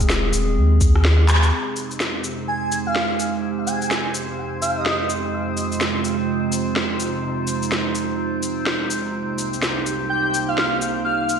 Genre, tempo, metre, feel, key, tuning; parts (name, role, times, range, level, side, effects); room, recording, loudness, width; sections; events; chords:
future garage; 126 BPM; 4/4; swing 62% on 16ths; F minor; A4 = 439 Hz
warbly tape-like pad; sustained chords; 0.0-11.4 s; C2 to Ab4; -24 LUFS; right 4 dB; chorus, built-in reverb, sidechain pumping
warm sub bass; bass; 0.0-1.5 s; Eb1 to Eb2; -16 LUFS; equal; sidechain pumping
electronic kick drum; drums; 0.0-0.9 s; -19 LUFS; equal
electronic shaker, snare drum, rim click and handclaps; drums; 0.0-11.4 s; -24 LUFS; equal
drifting glass-harmonics texture; texture; 1.9-11.4 s; C4 to C5; -31 LUFS; left 2 dB; chorus, built-in reverb
airy dreamy lead; melody; 2.5-5.1, 10.1-11.3 s; Eb5 to Ab5; -24 LUFS; equal; chorus, ping-pong delay
wet lush hall reverb, RT60 1.6 s, digital ambience; dreamy mix soaked in reverb; -19 LUFS; side -7 dB against mid
0.0-1.5 A section; 1.5-11.4 B section
kick drops out 1.1-1.5; drum fill 1.3; band accent 1.3
0.0 Ab; 1.5 Fm7; 9.1 Cm7